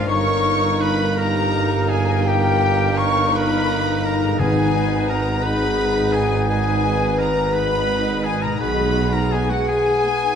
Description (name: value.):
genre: classical, slow romantic movement for symphony orchestra.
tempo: 56 BPM (dotted quarters).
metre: 12/8.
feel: rubato.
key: G# minor.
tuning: A4 = 440 Hz.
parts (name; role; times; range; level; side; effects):
rich chamber violin section; melody; 0.0-10.4 s; F#5 to C#6; -30 LUFS; left 5 dB; none.
bright oboe; second line; 0.0-10.4 s; F#4 to C#5; -28 LUFS; right 2 dB; none.
hollow small flute group; second line; 0.0-10.4 s; F#5 to C#6; -25 LUFS; left 4 dB; none.
rich chamber violin section; second line; 0.0-10.4 s; F#5 to C#6; -31 LUFS; left 5 dB; none.
rich chamber viola section; accompaniment; 0.0-10.4 s; D#3 to B4; -27 LUFS; equal; none.
dark French horn section; sustained chords; 0.0-10.4 s; D#4 to B4; -25 LUFS; left 4 dB; none.
concert harp; arpeggios; 0.0-10.4 s; G2 to D#5; -32 LUFS; left 9 dB; none.
rich chamber cello section; bass; 0.0-9.5 s; G2 to B2; -27 LUFS; right 4 dB; none.
rich studio double bass section; bass; 0.0-9.5 s; G1 to B1; -26 LUFS; right 3 dB; none.
clear clarinet; second line; 0.1-10.4 s; D#4 to G#4; -31 LUFS; left 5 dB; none.
warm bassoon; accompaniment; 0.1-10.4 s; A#3 to B3; -28 LUFS; right 2 dB; none.
mellow tuba; bass; 0.1-9.5 s; G1 to B1; -27 LUFS; right 5 dB; none.
timpani; percussion; 4.4-5.4 s; G#2; -26 LUFS; equal; none.
room: wet scoring stage reverb, RT60 1.9 s.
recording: dark, warm production.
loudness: -17 LUFS.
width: side -7 dB against mid.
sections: 0.0-10.4 A section.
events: none.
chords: 0.1 D#7/G; 4.4 G#m; 8.6 G#m/B.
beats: | 0.08 1.18 2.26 3.35 | 4.40 5.44 6.48 7.54 | 8.60 9.68.